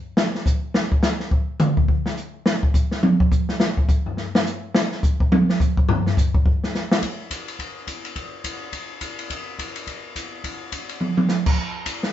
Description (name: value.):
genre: jazz.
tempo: 211 BPM.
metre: 4/4.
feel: swing 61% on 8ths.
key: none.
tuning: none.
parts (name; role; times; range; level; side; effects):
open jazz drum kit; drums; 0.2-12.1 s; crash cymbal, hi-hat, kick drum, ride cymbal, snare drum, toms; -19 LUFS; equal; none.
room: moderate studio reverb, RT60 0.7 s.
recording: band playing live in one room, nothing above 7.8 kHz.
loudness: -19 LUFS.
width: side -11 dB against mid.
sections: 0.0-7.0 A section; 7.0-12.1 B section.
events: drum solo 0.0-7.0; drum fill 11.0.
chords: none.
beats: | 0.17 0.46 0.74 1.03 | 1.31 1.60 1.89 2.17 | 2.46 2.74 3.03 3.31 | 3.60 3.88 4.17 4.45 | 4.74 5.02 5.31 5.59 | 5.88 6.16 6.45 6.73 | 7.02 7.30 7.59 7.87 | 8.16 8.44 8.73 9.01 | 9.30 9.58 9.87 10.15 | 10.44 10.72 11.01 11.29 | 11.57 11.86.